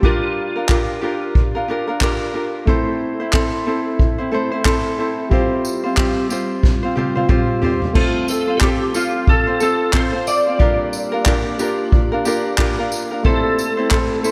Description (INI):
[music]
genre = acoustic pop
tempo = 91 BPM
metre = 4/4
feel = swing 60% on 16ths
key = F major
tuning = A4 = 439 Hz
[part]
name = clean lap steel guitar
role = melody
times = 0.0-1.0, 8.0-14.3 s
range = F4 to D5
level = -24 LUFS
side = equal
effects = ensemble chorus, diffuse ambient delay
[part]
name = ukulele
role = accompaniment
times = 0.0-14.3 s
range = C4 to C5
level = -23 LUFS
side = equal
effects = none
[part]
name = warm upright piano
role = accompaniment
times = 0.0-14.3 s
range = G3 to C5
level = -32 LUFS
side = equal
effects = none
[part]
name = unplugged drum kit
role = drums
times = 0.0-14.3 s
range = crash cymbal, handclaps, kick drum, snare drum, tambourine, toms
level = -20 LUFS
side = equal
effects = none
[part]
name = glass harmonica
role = sustained chords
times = 2.7-14.3 s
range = G3 to F5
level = -29 LUFS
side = equal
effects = none
[sound]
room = moderate lush hall reverb, RT60 2.0 s, studio ambience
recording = dreamy mix soaked in reverb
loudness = -18 LUFS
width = mono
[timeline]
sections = 0.0-8.0 A section; 8.0-14.3 B section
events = drum fill 6.6-8.0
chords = 0.0 Gm7; 2.7 Am; 5.3 Csus4/G; 8.0 F; 10.6 Gm7; 13.2 Am